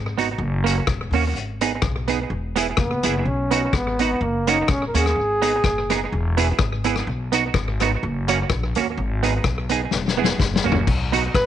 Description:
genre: ska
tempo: 126 BPM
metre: 4/4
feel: swing 54% on 8ths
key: B major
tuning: A4 = 440 Hz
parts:
  - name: upright bass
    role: bass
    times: 0.0-11.5 s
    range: E1 to D#2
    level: -24 LUFS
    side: left 1 dB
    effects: none
  - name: semi-hollow electric guitar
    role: accompaniment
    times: 0.2-11.2 s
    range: A#3 to G#4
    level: -23 LUFS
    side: right 9 dB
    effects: analog chorus, slapback echo
  - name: vintage drum kit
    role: drums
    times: 0.2-11.5 s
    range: crash cymbal, hi-hat, kick drum, rim click, snare drum, toms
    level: -23 LUFS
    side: left 4 dB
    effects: slapback echo
  - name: clear trombone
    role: melody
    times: 2.8-6.4 s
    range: A#3 to A#4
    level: -23 LUFS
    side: equal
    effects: none
  - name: breathy alto saxophone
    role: melody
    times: 11.3-11.5 s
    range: B4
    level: -18 LUFS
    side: left 1 dB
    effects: none
room: small room ambience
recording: 1960s-style stereo, nothing above 10.3 kHz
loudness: -19 LUFS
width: side -10 dB against mid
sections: 0.0-10.9 A section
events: drum fill 9.9-10.9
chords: 0.4 F#; 1.4 G#m; 2.3 E; 3.3 B; 4.2 F#; 5.2 G#m; 6.1 E; 7.1 B; 8.0 F#; 9.0 G#m; 9.9 E; 10.4 F#; 10.9 B

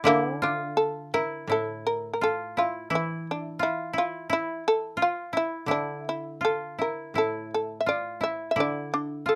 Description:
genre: japanese traditional, Japanese chamber music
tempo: 85 BPM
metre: 2/4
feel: rubato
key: D hirajoshi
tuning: A4 = 439 Hz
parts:
  - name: shamisen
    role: melody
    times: 0.0-9.4 s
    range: D4 to E5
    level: -29 LUFS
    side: equal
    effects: none
  - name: koto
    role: second line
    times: 0.0-9.4 s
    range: E4 to F4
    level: -33 LUFS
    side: equal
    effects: none
  - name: koto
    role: accompaniment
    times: 0.0-9.4 s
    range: A2 to E3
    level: -36 LUFS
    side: equal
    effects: none
room: light reverb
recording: close, detailed microphones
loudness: -28 LUFS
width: mono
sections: 0.0-1.5 A section; 1.5-9.4 B section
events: none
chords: none

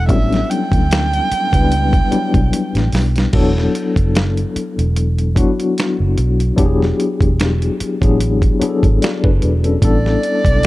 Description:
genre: R&B, neo-soul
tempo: 74 BPM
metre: 4/4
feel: swing 55% on 16ths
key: unclear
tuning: A4 = 440 Hz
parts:
  - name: warm erhu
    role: melody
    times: 0.0-2.9, 9.9-10.7 s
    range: D5 to G5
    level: -20 LUFS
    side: right 3 dB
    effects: none
  - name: mellow tine electric piano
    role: accompaniment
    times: 0.0-10.7 s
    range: F#3 to D5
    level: -18 LUFS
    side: left 3 dB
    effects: medium tremolo
  - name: vintage muted fingered electric bass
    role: bass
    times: 0.0-10.7 s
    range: E1 to D2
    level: -17 LUFS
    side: equal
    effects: none
  - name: dusty soul sampler-style drum kit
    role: drums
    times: 0.1-10.7 s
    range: crash cymbal, finger snaps, hi-hat, kick drum, snare drum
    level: -17 LUFS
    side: equal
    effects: none
room: little or no reverb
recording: dark, warm production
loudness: -13 LUFS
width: side -17 dB against mid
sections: 0.0-10.7 A section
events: drum fill 2.5-3.3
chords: 0.0 A9sus4; 3.3 E9sus4; 9.8 A9sus4

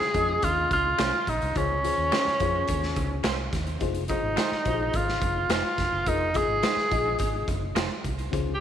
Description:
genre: uptempo 1960s-style soul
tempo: 106 BPM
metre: 4/4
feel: straight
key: unclear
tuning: A4 = 442 Hz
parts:
  - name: warm tenor saxophone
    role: melody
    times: 0.0-8.6 s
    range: Db4 to Ab4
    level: -26 LUFS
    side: right 1 dB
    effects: none
  - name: reed electric piano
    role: accompaniment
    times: 0.0-8.6 s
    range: Db3 to Eb5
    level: -33 LUFS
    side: left 13 dB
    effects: overdrive
  - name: vintage muted fingered electric bass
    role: bass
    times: 0.0-8.6 s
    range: F1 to F2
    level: -32 LUFS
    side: right 1 dB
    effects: none
  - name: raw garage drum kit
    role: drums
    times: 0.0-8.5 s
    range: hi-hat, kick drum, snare drum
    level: -30 LUFS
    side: equal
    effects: none
  - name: electric guitar through a small old amp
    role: stabs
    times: 1.0-7.9 s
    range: Ab3 to C5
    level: -36 LUFS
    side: right 12 dB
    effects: tape echo
  - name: finger snaps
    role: percussion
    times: 1.0-7.9 s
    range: none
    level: -39 LUFS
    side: left 11 dB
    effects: none
room: moderate plate reverb, RT60 2.2 s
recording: 1960s-style stereo with parts hard left and right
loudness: -23 LUFS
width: side -9 dB against mid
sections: 0.0-8.6 A section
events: none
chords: 0.0 Dbmaj7; 3.8 Fm7

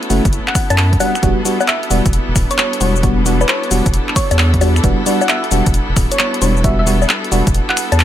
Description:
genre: UK garage, two-step garage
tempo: 133 BPM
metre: 4/4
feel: swing 67% on 16ths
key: unclear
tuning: A4 = 439 Hz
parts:
  - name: airy breathy pad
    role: sustained chords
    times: 0.0-8.0 s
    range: G3 to F#4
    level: -28 LUFS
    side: right 1 dB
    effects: none
  - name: punchy analog drum machine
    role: drums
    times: 0.0-8.0 s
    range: bongos, cabasa, finger snaps, handclaps, hi-hat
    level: -18 LUFS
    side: left 2 dB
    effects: overdrive
  - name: rich studio string section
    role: texture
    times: 0.0-8.0 s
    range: B3 to C#5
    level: -23 LUFS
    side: left 1 dB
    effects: sidechain pumping
  - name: FM electric piano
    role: stabs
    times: 0.1-7.5 s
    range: G3 to F#4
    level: -20 LUFS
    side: equal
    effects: chorus, phaser, cassette tape, dub echo
  - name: saturated sub bass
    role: bass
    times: 0.1-8.0 s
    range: D1 to F#2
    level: -15 LUFS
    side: equal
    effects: none
  - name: electronic kick drum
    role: drums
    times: 0.3-7.5 s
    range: none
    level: -17 LUFS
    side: equal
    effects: overdrive
  - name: thumb-piano-like synth pluck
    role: melody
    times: 0.5-8.0 s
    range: B4 to A5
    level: -22 LUFS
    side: equal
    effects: chorus, dub echo
room: little or no reverb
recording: none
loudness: -12 LUFS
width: side -12 dB against mid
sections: 0.0-8.0 A section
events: kick drops out 7.5-8.0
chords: 0.0 F#m7; 1.0 Em7

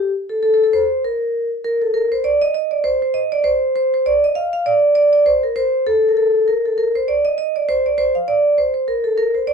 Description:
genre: celtic folk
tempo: 199 BPM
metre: 4/4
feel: swing 57% on 8ths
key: unclear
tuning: A4 = 439 Hz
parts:
  - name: vibraphone with medium hard mallets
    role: solo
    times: 0.0-9.5 s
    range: G4 to F5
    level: -15 LUFS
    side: equal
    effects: none
room: moderate small room reverb, RT60 0.5 s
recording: dark, warm production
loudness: -15 LUFS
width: side -6 dB against mid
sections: 0.0-1.6 A section; 1.6-9.5 B section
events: none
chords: none

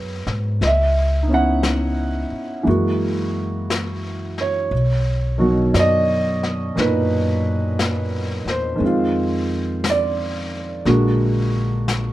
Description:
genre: jazz ballad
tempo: 58 BPM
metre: 4/4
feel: swing 66% on 8ths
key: unclear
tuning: A4 = 439 Hz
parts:
  - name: dark upright piano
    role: accompaniment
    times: 0.0-12.1 s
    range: A#2 to Gb5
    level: -20 LUFS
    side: right 1 dB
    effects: none
  - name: upright bass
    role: bass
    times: 0.0-12.1 s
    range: Bb1 to Ab2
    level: -22 LUFS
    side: equal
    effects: none
  - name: vintage brush drum kit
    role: drums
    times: 0.3-12.1 s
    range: brushed snare drum, hi-hat, snare drum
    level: -28 LUFS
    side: left 3 dB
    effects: none
room: light reverb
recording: dark, warm production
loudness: -18 LUFS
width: side -15 dB against mid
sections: 0.0-12.1 A section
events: none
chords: 0.0 Abm9; 0.6 Dbm9; 2.7 Gb9; 4.7 Bmaj7; 8.8 Fm7; 10.9 Bb7b13

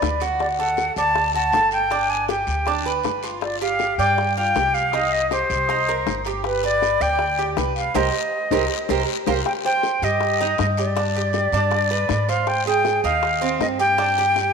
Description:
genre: latin, Cuban son and guajira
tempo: 159 BPM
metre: 4/4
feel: straight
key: C harmonic minor, C minor from 9.5 s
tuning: A4 = 443 Hz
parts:
  - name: silver concert flute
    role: melody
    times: 0.0-14.5 s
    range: B4 to A5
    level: -21 LUFS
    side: left 1 dB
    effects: none
  - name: Cuban tres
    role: arpeggios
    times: 0.0-14.5 s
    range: C4 to D5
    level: -24 LUFS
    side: right 6 dB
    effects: none
  - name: upright bass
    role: bass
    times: 0.0-14.5 s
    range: G1 to Ab2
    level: -28 LUFS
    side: left 1 dB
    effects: none
  - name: bongos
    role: percussion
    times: 0.0-14.5 s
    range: none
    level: -30 LUFS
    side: left 14 dB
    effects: none
  - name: guiro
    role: percussion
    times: 0.0-14.5 s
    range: none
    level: -35 LUFS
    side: left 14 dB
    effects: none
room: wet echo chamber reverb, RT60 2.1 s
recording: 1960s-style stereo with parts hard left and right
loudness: -18 LUFS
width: side -6 dB against mid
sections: 0.0-9.5 A section; 9.5-14.5 B section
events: drum fill 8.0-9.5; band accent 8.0-9.5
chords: 0.4 D; 1.9 G; 3.4 G5; 4.9 Cm7; 6.4 G; 8.0 Cm7; 9.5 Cm; 11.0 G; 12.5 Ab; 14.0 G5

